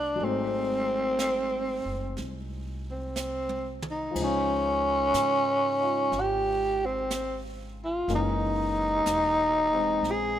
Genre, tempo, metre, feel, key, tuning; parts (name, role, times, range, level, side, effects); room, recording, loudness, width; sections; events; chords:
jazz ballad; 61 BPM; 4/4; swing 68% on 8ths; A4 = 439 Hz
growling tenor saxophone; melody; 0.0-10.4 s; C4 to Ab4; -26 LUFS; equal
warm concert grand piano; accompaniment; 0.0-10.4 s; Db3 to C5; -34 LUFS; left 3 dB
upright bass; bass; 0.0-10.4 s; Fb1 to Ab2; -37 LUFS; equal
jazz brush drum kit; drums; 0.2-10.4 s; brushed snare drum, hi-hat, kick drum, ride cymbal, snare drum, toms; -39 LUFS; right 3 dB
moderate echo chamber reverb, RT60 2.1 s; minimal, uncompressed stereo recording; -25 LUFS; side -11 dB against mid
0.0-10.4 A section
drum fill 3.2-4.2
0.2 Ab7b9; 4.2 Dbmaj9; 8.1 Gb13